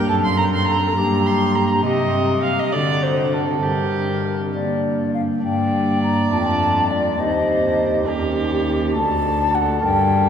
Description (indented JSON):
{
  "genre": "classical, baroque-style sonata movement with continuo",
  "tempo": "68 BPM (dotted quarters)",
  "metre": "6/8",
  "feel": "straight",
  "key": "G minor",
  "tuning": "A4 = 440 Hz",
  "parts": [
    { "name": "mellow silver concert flute", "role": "melody", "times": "0.0-10.3 s", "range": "F#4 to Bb5", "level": "-23 LUFS", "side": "left 3 dB", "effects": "none" },
    { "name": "dark violin", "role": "second line", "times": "0.0-10.3 s", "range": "G4 to C6", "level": "-22 LUFS", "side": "right 3 dB", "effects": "none" },
    { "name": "pipe organ, stopped flute", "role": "accompaniment", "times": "0.0-10.3 s", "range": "D2 to D5", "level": "-22 LUFS", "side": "left 1 dB", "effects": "none" },
    { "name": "dark cello", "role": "bass", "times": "0.0-10.3 s", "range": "D2 to D3", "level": "-23 LUFS", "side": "equal", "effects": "none" }
  ],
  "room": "wet cathedral reverb, RT60 5.7 s",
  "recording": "recorded in a church or concert hall",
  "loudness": "-17 LUFS",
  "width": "side -8 dB against mid",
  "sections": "0.0-5.4 A section; 5.4-10.3 B section",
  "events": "none",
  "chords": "0.1 D7/F#; 1.0 Gm; 1.8 Cm; 2.7 D7; 3.6 Gm; 6.3 Dm/F; 7.2 Cm/Eb; 8.1 Eb7; 9.0 D",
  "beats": "| 0.09 0.96 | 1.85 2.73 | 3.63 4.54 | 5.45 6.33 | 7.21 8.09 | 8.96 9.84"
}